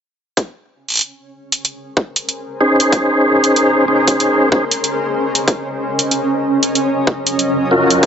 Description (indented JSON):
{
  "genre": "glitch hop",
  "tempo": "94 BPM",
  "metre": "4/4",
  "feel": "swing 61% on 16ths",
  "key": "Bb minor",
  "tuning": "A4 = 435 Hz",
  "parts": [
    { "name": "electronic hi-hat", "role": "drums", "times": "0.4-8.1 s", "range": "none", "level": "-16 LUFS", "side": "right 1 dB", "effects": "overdrive, small room ambience" },
    { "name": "electronic kick drum", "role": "drums", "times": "0.4-8.1 s", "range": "none", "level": "-14 LUFS", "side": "equal", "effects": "overdrive, high-pass filter on kick, small room ambience" },
    { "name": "granular cloud pad", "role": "texture", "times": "2.3-8.1 s", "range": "Gb3 to Eb5", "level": "-19 LUFS", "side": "equal", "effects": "built-in reverb, sidechain pumping" },
    { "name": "tonewheel organ", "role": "stabs", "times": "2.6-8.1 s", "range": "Db4 to C5", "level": "-13 LUFS", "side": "equal", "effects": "chorus vibrato, stopped rotary speaker, vintage 12-bit sampler grit, sidechain pumping, low-pass filter, tape echo" }
  ],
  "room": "light reverb, digital ambience",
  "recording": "nothing above 7.9 kHz",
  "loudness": "-14 LUFS",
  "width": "side -7 dB against mid",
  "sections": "0.4-8.1 A section",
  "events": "fade-in on ambient pad 0.4-8.1",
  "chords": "0.4 Bbm11; 5.5 Ebm7"
}